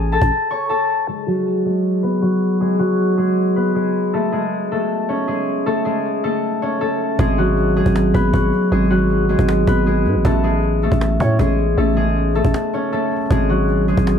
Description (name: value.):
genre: hip hop, trap.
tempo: 157 BPM.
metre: 4/4.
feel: half-time.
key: G# phrygian.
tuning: A4 = 440 Hz.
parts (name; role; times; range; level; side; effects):
concert harp; melody; 0.0-14.2 s; F#3 to C#6; -17 LUFS; left 1 dB; low-pass filter.
growling 808-style bass; bass; 0.0-0.3, 7.2-14.2 s; G#1 to A2; -18 LUFS; right 1 dB; none.
cajon; drums; 0.1-0.3, 7.2-14.2 s; none; -23 LUFS; right 1 dB; none.
room: light reverb, small room ambience.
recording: dark, warm production.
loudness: -15 LUFS.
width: side -8 dB against mid.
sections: 0.0-1.1 A section; 1.1-7.2 B section; 7.2-14.2 C section.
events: break 0.3-1.1, 12.5-13.3; filter sweep on harp 1.1-7.2.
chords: 0.0 A; 1.1 G#m7; 4.1 A; 7.2 G#m7; 10.2 A; 13.3 G#7(no3).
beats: 0.31 0.69 | 1.08 1.46 1.84 2.22 | 2.60 2.99 3.37 3.75 | 4.13 4.52 4.90 5.28 | 5.66 6.04 6.43 6.81 | 7.19 7.57 7.96 8.34 | 8.72 9.10 9.48 9.87 | 10.25 10.63 11.01 11.39 | 11.78 12.16 12.54 12.92 | 13.30 13.69 14.07.